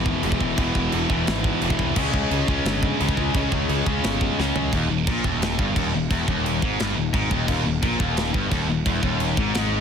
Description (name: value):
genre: heavy metal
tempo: 174 BPM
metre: 4/4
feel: straight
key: Eb phrygian dominant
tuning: A4 = 441 Hz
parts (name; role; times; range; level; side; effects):
- heavy high-gain guitar; riff; 0.0-9.8 s; Eb2 to Db4; -26 LUFS; left 15 dB; distortion
- heavy high-gain guitar; riff; 0.0-9.8 s; Eb2 to Db4; -28 LUFS; right 14 dB; distortion
- raw garage guitar; riff; 0.0-9.8 s; Eb2 to Db4; -28 LUFS; right 1 dB; overdrive
- fuzz picked electric bass; bass; 0.0-9.8 s; Eb1 to Db2; -26 LUFS; equal; overdrive
- tight metal drum kit; drums; 0.1-9.6 s; china cymbal, crash cymbal, kick drum, snare drum, toms; -26 LUFS; right 1 dB; soft clipping on kick, soft clipping on snare
room: little or no reverb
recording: dense, heavily limited modern master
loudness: -20 LUFS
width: side -7 dB against mid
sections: 0.0-4.7 A section; 4.7-9.8 B section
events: drum fill 4.4-4.7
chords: 0.0 E; 2.0 Db5; 4.7 Eb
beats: 0.24 | 0.59 0.93 1.28 1.62 | 1.97 2.31 2.66 3.00 | 3.35 3.70 4.04 4.39 | 4.73 5.08 5.42 5.76 | 6.11 6.45 6.80 7.14 | 7.49 7.83 8.18 8.52 | 8.87 9.21 9.55